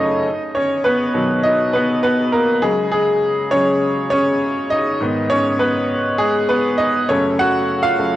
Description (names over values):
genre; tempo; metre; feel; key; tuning
pop; 101 BPM; 4/4; straight; Db mixolydian; A4 = 440 Hz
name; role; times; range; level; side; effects
bright upright piano; solo; 0.0-8.2 s; Gb2 to Gb5; -15 LUFS; equal; cassette tape, analog delay
room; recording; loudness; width
light reverb, small room ambience; home recording on cassette; -15 LUFS; side -14 dB against mid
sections
0.0-8.2 A section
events
upright piano solo 0.0-8.2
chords
0.3 Cb; 2.6 Dbsus4; 5.0 Abm; 7.1 Gbm